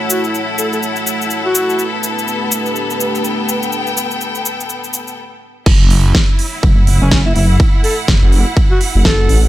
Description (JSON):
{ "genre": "bass house", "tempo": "124 BPM", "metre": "4/4", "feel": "swing 60% on 16ths", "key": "F# phrygian", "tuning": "A4 = 439 Hz", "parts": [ { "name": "dark analog pad", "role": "sustained chords", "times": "0.0-9.5 s", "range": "A3 to C#5", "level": "-24 LUFS", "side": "right 2 dB", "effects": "chorus, sidechain pumping" }, { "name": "bright studio string section", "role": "texture", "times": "0.0-9.5 s", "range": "B3 to G5", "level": "-20 LUFS", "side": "left 2 dB", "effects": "sidechain pumping" }, { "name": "mellow alto saxophone", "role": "melody", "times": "0.1-1.8, 7.0-9.4 s", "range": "C#4 to A4", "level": "-20 LUFS", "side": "equal", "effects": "tape echo" }, { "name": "cabasa", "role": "percussion", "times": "0.1-5.2 s", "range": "none", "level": "-20 LUFS", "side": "left 2 dB", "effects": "none" }, { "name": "phased detuned saw bass", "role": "bass", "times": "5.7-9.5 s", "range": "F#1 to A1", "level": "-11 LUFS", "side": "equal", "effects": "phaser, sidechain pumping" }, { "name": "big-room dance drum kit", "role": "drums", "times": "5.7-9.5 s", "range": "crash cymbal, hi-hat, ride cymbal, snare drum", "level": "-19 LUFS", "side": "right 1 dB", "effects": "none" }, { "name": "electronic kick drum", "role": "drums", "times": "5.7-9.2 s", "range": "none", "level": "-12 LUFS", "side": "equal", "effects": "none" }, { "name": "pulsing pluck wobble bass", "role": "bass", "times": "6.6-8.2 s", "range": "F#1", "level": "-13 LUFS", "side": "equal", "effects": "chorus, tube saturation, sidechain pumping" } ], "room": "digital ambience", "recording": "none", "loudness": "-12 LUFS", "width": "side -15 dB against mid", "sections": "0.0-5.7 A section; 5.7-9.5 B section", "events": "break 5.2-5.7; drop 5.7-9.5", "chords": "0.0 F#m7; 1.8 Gadd9; 5.7 F#m7" }